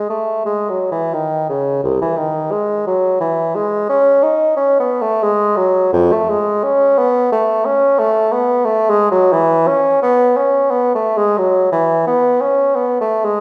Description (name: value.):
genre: classical, baroque-style fantasia for unaccompanied bassoon.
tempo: 88 BPM.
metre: 3/4.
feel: rubato.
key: C# minor.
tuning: A4 = 440 Hz.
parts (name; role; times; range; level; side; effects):
mellow bassoon; solo; 0.0-13.4 s; B#1 to D#4; -15 LUFS; equal; none.
room: wet recital hall reverb, RT60 1.4 s.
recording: recorded in a church or concert hall, nothing above 10.5 kHz.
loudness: -15 LUFS.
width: mono.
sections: 0.0-13.4 A section.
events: none.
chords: none.